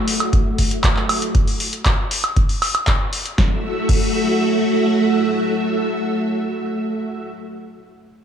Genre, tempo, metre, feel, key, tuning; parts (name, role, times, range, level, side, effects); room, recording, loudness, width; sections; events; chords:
acid house; 118 BPM; 4/4; straight; F# minor; A4 = 440 Hz
string machine, full ensemble; sustained chords; 0.0-7.3 s; A3 to E5; -19 LUFS; right 1 dB; ensemble chorus, sidechain pumping
electro analog drum machine; drums; 0.1-4.0 s; crash cymbal, handclaps, hi-hat, snare drum, woodblock; -22 LUFS; equal
electronic kick drum; drums; 0.3-4.0 s; -18 LUFS; equal
light reverb; studio reverb; -16 LUFS; side -8 dB against mid
0.0-3.4 A section; 3.4-7.5 B section
filter sweep on string machine 0.0-1.3
0.0 F#m7